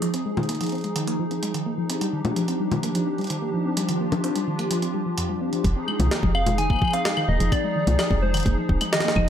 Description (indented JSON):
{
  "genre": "IDM",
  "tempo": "128 BPM",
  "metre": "4/4",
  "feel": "straight",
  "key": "F dorian",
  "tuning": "A4 = 440 Hz",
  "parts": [
    { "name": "hollow soft pad", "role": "sustained chords", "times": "0.0-9.3 s", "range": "F3 to Ab4", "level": "-27 LUFS", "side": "equal", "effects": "ensemble chorus" },
    { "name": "soft round pluck", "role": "arpeggios", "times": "0.0-9.2 s", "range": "F2 to C4", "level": "-28 LUFS", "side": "left 1 dB", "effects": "lush chorus, analog delay" },
    { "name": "jungle sampler-style drum kit", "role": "drums", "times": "0.0-9.3 s", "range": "claves, congas, hi-hat, snare drum", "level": "-28 LUFS", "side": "left 1 dB", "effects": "none" },
    { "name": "woody FM bass", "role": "bass", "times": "5.6-9.3 s", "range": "Eb1 to C2", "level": "-23 LUFS", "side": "equal", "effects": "none" },
    { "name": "electronic kick drum", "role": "drums", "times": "5.6-9.3 s", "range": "none", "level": "-24 LUFS", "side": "equal", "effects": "none" },
    { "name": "soft struck synth lead", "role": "melody", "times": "6.3-9.3 s", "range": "C5 to Ab5", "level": "-26 LUFS", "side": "equal", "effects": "chorus, ping-pong delay" }
  ],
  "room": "light reverb, digital ambience",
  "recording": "none",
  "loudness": "-21 LUFS",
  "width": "side -9 dB against mid",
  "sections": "0.0-5.6 A section; 5.6-9.3 B section",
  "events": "none",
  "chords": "0.0 Fm7; 1.9 Ebmaj9; 5.6 Fm7"
}